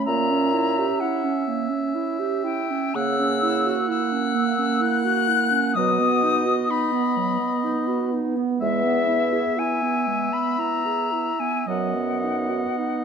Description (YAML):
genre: classical, slow romantic movement for wind quintet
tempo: 54-65 BPM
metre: 3/4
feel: rubato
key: B major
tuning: A4 = 439 Hz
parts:
  - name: silver concert flute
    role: melody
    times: 0.0-13.0 s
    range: E5 to F#6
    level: -24 LUFS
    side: left 6 dB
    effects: none
  - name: warm French horn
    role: accompaniment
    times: 0.0-13.0 s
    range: A#3 to C#4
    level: -27 LUFS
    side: right 2 dB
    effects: none
  - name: warm clarinet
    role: accompaniment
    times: 0.0-13.0 s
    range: F#3 to G#4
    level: -26 LUFS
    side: right 11 dB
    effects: none
  - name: warm oboe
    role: second line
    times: 0.1-13.0 s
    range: D#5 to F#5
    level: -29 LUFS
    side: left 1 dB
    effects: none
  - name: mellow bassoon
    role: bass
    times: 0.1-12.6 s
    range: E2 to C#3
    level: -27 LUFS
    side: equal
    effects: none
room: moderate recital hall reverb, RT60 1.6 s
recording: close, detailed microphones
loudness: -20 LUFS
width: side -6 dB against mid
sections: 0.0-13.0 A section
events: none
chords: 0.1 A#dim7; 3.0 F#7/C#; 5.8 B; 8.6 E; 11.7 B/F#